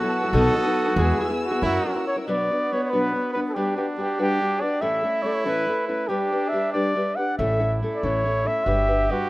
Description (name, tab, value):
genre	mexican folk, mariachi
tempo	94 BPM (dotted quarters)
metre	6/8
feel	straight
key	unclear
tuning	A4 = 440 Hz
part	mellow trumpet	melody	0.0-9.3 s	F#4 to F#5	-24 LUFS	equal	tape echo
part	clear trumpet	second line	0.0-9.3 s	B3 to A4	-30 LUFS	right 3 dB	none
part	nylon-string guitar	accompaniment	0.0-9.3 s	A2 to B4	-26 LUFS	left 1 dB	none
part	warm studio violin section	sustained chords	0.0-2.3 s	A#4 to E6	-32 LUFS	equal	none
part	upright bass	bass	0.3-1.8, 7.4-9.1 s	G1 to F#2	-25 LUFS	equal	none
room	light reverb, small room ambience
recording	rough home demo mix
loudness	-20 LUFS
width	side -19 dB against mid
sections	0.0-2.3 A section; 2.3-9.3 B section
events	none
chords	0.3 B7; 1.0 E; 1.6 F#7; 2.3 Bm; 3.6 Gmaj7; 4.8 A; 6.1 G; 7.4 A; 8.7 Gmaj7